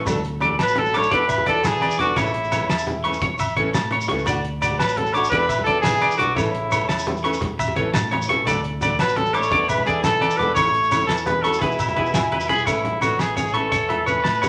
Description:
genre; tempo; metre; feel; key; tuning
highlife guitar band; 114 BPM (dotted quarters); 12/8; straight; A major; A4 = 440 Hz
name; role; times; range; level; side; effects
electric guitar at the edge of break-up; arpeggios; 0.0-14.5 s; B4 to D6; -26 LUFS; equal; tremolo
fingered electric bass; bass; 0.0-14.5 s; E1 to E3; -34 LUFS; equal; none
flamenco guitar; accompaniment; 0.1-14.2 s; E3 to A4; -31 LUFS; equal; none
damped 70s drum kit; drums; 0.1-14.5 s; hi-hat, kick drum, snare drum; -31 LUFS; equal; none
agogo bells; percussion; 0.1-14.5 s; none; -32 LUFS; equal; none
congas; percussion; 0.1-14.5 s; none; -32 LUFS; equal; none
shekere; percussion; 0.1-14.5 s; none; -35 LUFS; equal; none
clear trumpet; melody; 0.6-14.5 s; E4 to C#5; -24 LUFS; equal; none
trombone with cup mute; second line; 0.6-14.5 s; B2 to A3; -37 LUFS; equal; none
room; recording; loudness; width
wet large studio reverb, RT60 0.9 s; none; -21 LUFS; mono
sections
0.0-12.7 A section; 12.7-14.5 B section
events
none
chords
0.1 D; 1.1 E7sus4; 2.2 A; 4.3 D; 5.3 E7sus4; 6.4 A; 8.5 D; 9.5 E7sus4; 10.6 A; 11.6 E; 12.7 A

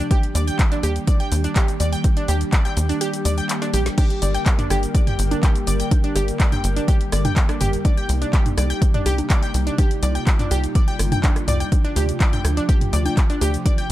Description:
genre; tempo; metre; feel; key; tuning
progressive house; 124 BPM; 4/4; straight; G minor; A4 = 440 Hz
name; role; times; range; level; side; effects
airy breathy pad; sustained chords; 0.0-13.9 s; C3 to Bb4; -28 LUFS; left 1 dB; chorus, vintage 12-bit sampler grit, sidechain pumping
analog pluck; arpeggios; 0.0-13.9 s; D4 to G6; -26 LUFS; right 1 dB; chorus, sidechain pumping, dub echo
tight sequencer bass; bass; 0.0-13.9 s; G1 to Eb2; -20 LUFS; equal; sidechain pumping
deep house drum kit; drums; 0.0-13.9 s; crash cymbal, handclaps, hi-hat, shaker, snare drum; -28 LUFS; left 1 dB; none
electronic kick drum; drums; 0.1-13.8 s; none; -18 LUFS; equal; none
punchy analog drum machine; percussion; 4.0-13.8 s; congas, rim click, toms; -26 LUFS; right 1 dB; sidechain pumping on perc, sidechain pumping on toms, sidechain pumping on snare
room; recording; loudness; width
little or no reverb; dark, warm production; -17 LUFS; side -14 dB against mid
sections
0.0-13.9 A section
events
break 3.0-4.0; drum fill 3.6-4.0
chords
0.1 Ebmaj7; 4.0 Gm; 7.8 Cm7; 11.7 Dm7

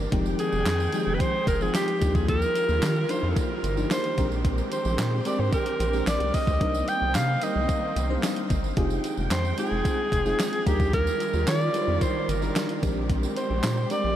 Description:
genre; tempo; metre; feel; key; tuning
early-eighties boogie funk; 111 BPM; 4/4; straight; F dorian; A4 = 441 Hz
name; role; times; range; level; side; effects
warm studio string section; sustained chords; 0.0-14.2 s; Eb3 to G5; -34 LUFS; right 3 dB; none
rubbery square bass; bass; 0.0-14.2 s; F1 to Eb3; -27 LUFS; equal; none
FM electric piano with soft pad layer; accompaniment; 0.1-14.2 s; F3 to C5; -31 LUFS; left 2 dB; chorus
crisp 8-bit digital drum machine; drums; 0.1-14.0 s; handclaps, hi-hat, kick drum, snare drum; -29 LUFS; equal; none
tambourine; percussion; 0.3-14.0 s; none; -43 LUFS; right 11 dB; none
breathy alto saxophone; melody; 0.4-14.2 s; G4 to G5; -27 LUFS; equal; analog delay
room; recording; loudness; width
moderate huge ambient reverb, RT60 8.3 s; dreamy mix soaked in reverb; -22 LUFS; side -11 dB against mid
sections
0.0-14.2 A section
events
none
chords
0.1 Fm9; 2.0 Ebmaj9; 4.2 Bb13; 6.6 Cm9; 8.8 Fm9; 10.7 Ebmaj9; 12.8 Bb13

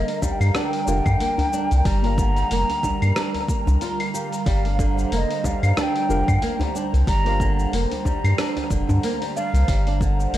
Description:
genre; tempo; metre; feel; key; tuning
organic downtempo; 92 BPM; 4/4; swing 57% on 16ths; G minor; A4 = 440 Hz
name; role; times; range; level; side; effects
breathy mellow ney; melody; 0.0-10.4 s; Eb5 to Bb5; -27 LUFS; equal; tape echo
deep mellow chord stab; accompaniment; 0.0-10.4 s; Bb3 to F5; -32 LUFS; left 3 dB; chorus, sidechain pumping, analog delay
airy breathy pad; sustained chords; 0.0-10.4 s; D3 to Bb5; -30 LUFS; right 1 dB; chorus, sidechain pumping
flamenco guitar; arpeggios; 0.0-10.4 s; D3 to G4; -28 LUFS; right 2 dB; analog delay
warm sub bass; bass; 0.0-10.4 s; F1 to G2; -20 LUFS; equal; sidechain pumping
dusty soul sampler-style drum kit; drums; 0.1-10.4 s; claves, hi-hat, rim click, shaker; -31 LUFS; left 1 dB; analog delay
electronic kick drum; drums; 0.2-10.2 s; none; -25 LUFS; equal; overdrive
djembe; percussion; 0.2-10.3 s; none; -30 LUFS; left 1 dB; analog delay
room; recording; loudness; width
light reverb, digital ambience; echo-heavy mix; -19 LUFS; side -13 dB against mid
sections
0.0-10.4 A section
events
none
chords
0.0 Gm7

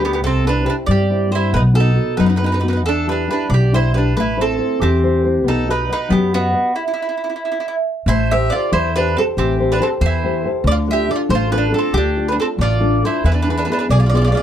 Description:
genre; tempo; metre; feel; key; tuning
italian folk, Italian serenade; 92 BPM (dotted quarters); 6/8; straight; A minor from 8.1 s; A4 = 439 Hz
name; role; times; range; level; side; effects
mandolin; melody; 0.0-14.4 s; E4 to E5; -20 LUFS; right 1 dB; none
mandolin; second line; 0.0-14.4 s; B3 to G#4; -23 LUFS; right 4 dB; none
nylon-string guitar; accompaniment; 0.0-14.4 s; B2 to D#5; -21 LUFS; left 3 dB; none
upright bass; bass; 0.0-14.3 s; A1 to G2; -18 LUFS; equal; none
room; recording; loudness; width
moderate studio ambience, RT60 0.5 s; dark, warm production; -14 LUFS; side -10 dB against mid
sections
0.0-8.1 A section; 8.1-14.4 B section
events
stop 6.8-8.1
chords
0.2 C; 1.5 B; 2.9 Em7; 4.2 Am; 5.5 B; 6.8 N.C.; 8.1 Am7; 10.7 Dm; 13.3 E

